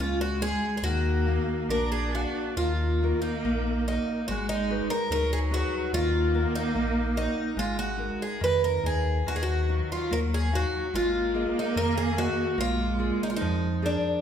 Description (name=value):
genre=fado-style ballad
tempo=72 BPM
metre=2/4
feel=rubato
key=Eb harmonic minor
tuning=A4 = 440 Hz
part: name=picked twelve-string acoustic guitar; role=melody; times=0.0-14.2 s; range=D4 to Cb5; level=-28 LUFS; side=equal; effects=none
part: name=rich cello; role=second line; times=0.0-14.2 s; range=Gb3 to D4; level=-32 LUFS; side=right 4 dB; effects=none
part: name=nylon-string guitar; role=accompaniment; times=0.0-14.2 s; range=D#3 to E#5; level=-33 LUFS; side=left 1 dB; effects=none
part: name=pure sine sub bass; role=bass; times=0.0-14.0 s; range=Ab1 to F2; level=-30 LUFS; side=left 1 dB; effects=none
room=wet recital hall reverb, RT60 1.5 s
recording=recorded in a church or concert hall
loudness=-24 LUFS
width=side -8 dB against mid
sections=0.0-2.6 A section; 2.6-14.2 B section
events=none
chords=0.0 C#5; 0.8 D#m; 1.7 A#; 2.6 Ebm; 4.3 Abm7; 5.9 Ebm; 7.6 Absus2; 9.3 Ebmadd9; 10.9 Absus2; 12.6 Bb7